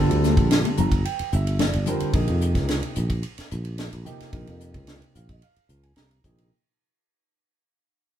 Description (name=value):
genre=electric jazz fusion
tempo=110 BPM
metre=4/4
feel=straight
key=unclear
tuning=A4 = 440 Hz
part: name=dark baby grand piano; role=accompaniment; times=0.0-6.5 s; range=C3 to Bb5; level=-27 LUFS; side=right 2 dB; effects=none
part: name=sustaining fretless electric bass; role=bass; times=0.0-6.5 s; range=G1 to F2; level=-24 LUFS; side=equal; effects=none
part: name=tight funk drum kit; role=drums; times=0.1-6.5 s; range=hi-hat, kick drum, ride cymbal, snare drum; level=-25 LUFS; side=equal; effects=none
part: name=congas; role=percussion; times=0.2-2.0 s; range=none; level=-28 LUFS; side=left 7 dB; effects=none
room=moderate studio reverb, RT60 0.6 s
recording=band playing live in one room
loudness=-21 LUFS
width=side -10 dB against mid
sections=0.0-6.5 A section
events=fade-out 0.0-6.5; grand piano fill 0.5-2.1, 4.9-6.5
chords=0.0 Gm11; 2.1 Bbm11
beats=0.50 1.05 1.59 | 2.14 2.69 3.23 3.78 | 4.33 4.87 5.42 5.97